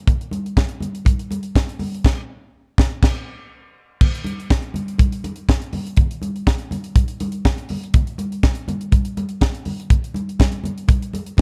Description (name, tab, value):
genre	disco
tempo	122 BPM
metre	4/4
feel	straight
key	none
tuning	none
part	tight funk drum kit	drums	0.1-11.4 s	crash cymbal, hi-hat, kick drum, snare drum	-18 LUFS	equal	none
part	congas	percussion	0.1-11.4 s	none	-30 LUFS	equal	none
room	little or no reverb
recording	dark, warm production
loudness	-20 LUFS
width	mono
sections	0.0-4.0 A section; 4.0-11.4 B section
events	band accent 2.0-4.0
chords	none